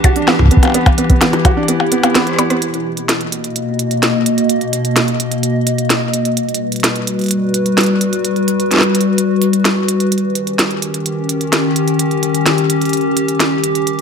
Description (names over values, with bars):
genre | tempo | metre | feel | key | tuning
IDM | 128 BPM | 4/4 | straight | unclear | A4 = 440 Hz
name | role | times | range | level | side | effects
warbly tape-like pad | sustained chords | 0.0-14.0 s | B2 to D#5 | -15 LUFS | left 1 dB | chorus, built-in reverb, sidechain pumping
felt-muted upright piano | arpeggios | 0.0-2.6 s | B3 to F#4 | -18 LUFS | right 3 dB | vintage 12-bit sampler grit, ping-pong delay
electronic kick drum | drums | 0.0-1.5 s | none | -11 LUFS | equal | none
glitchy drum kit | drums | 0.0-14.0 s | hi-hat, percussion blips, rim click, snare drum | -17 LUFS | equal | overdrive, ping-pong delay
room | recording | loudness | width
moderate digital room reverb, RT60 1.3 s, digital ambience | none | -12 LUFS | side -6 dB against mid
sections
0.0-2.6 A section; 2.6-14.0 B section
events
kick drops out 1.7-2.6; drum fill 2.2-2.6; band accent 2.5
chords
0.0 Em7; 2.6 Bmaj7; 6.4 Gmaj7; 10.1 D#7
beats
0.28 | 0.75 1.22 1.68 2.15 | 2.62 3.09 3.56 4.03 | 4.50 4.96 5.43 5.90 | 6.37 6.84 7.31 7.78 | 8.25 8.71 9.18 9.65 | 10.12 10.59 11.06 11.53 | 12.00 12.46 12.93 13.40 | 13.87